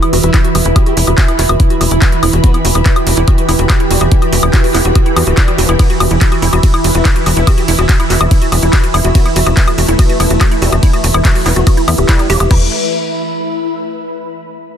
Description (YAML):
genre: psychedelic trance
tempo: 143 BPM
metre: 4/4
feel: straight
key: E minor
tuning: A4 = 439 Hz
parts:
  - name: bubbling stepped-filter texture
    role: sustained chords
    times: 0.0-12.5 s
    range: E3 to G4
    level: -18 LUFS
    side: right 2 dB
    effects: chorus, built-in reverb, sidechain pumping
  - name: woody wave-folded pluck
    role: riff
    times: 0.0-12.7 s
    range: E4 to E5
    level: -20 LUFS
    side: right 1 dB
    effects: chorus, auto-pan, sidechain pumping, tape echo
  - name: drum and bass drum kit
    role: drums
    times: 0.0-12.6 s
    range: crash cymbal, handclaps, hi-hat, ride cymbal, woodblock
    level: -17 LUFS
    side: left 1 dB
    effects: overdrive
  - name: ethereal airy pad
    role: texture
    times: 0.0-14.1 s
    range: E4 to B5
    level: -19 LUFS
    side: equal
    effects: ensemble chorus, built-in reverb, phaser, sidechain pumping
  - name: tight sequencer bass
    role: bass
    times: 0.1-12.7 s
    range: D1 to E2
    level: -13 LUFS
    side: equal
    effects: none
  - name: formant-sweep wobble bass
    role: second line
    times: 0.2-12.4 s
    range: G3 to G4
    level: -27 LUFS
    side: left 4 dB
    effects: none
  - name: electronic kick drum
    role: drums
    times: 0.3-12.6 s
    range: none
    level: -10 LUFS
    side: equal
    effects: overdrive
room: digital ambience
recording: dense, heavily limited modern master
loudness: -9 LUFS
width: side -9 dB against mid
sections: 0.0-12.5 A section; 12.5-14.2 B section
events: drop 0.0-12.5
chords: 0.0 E5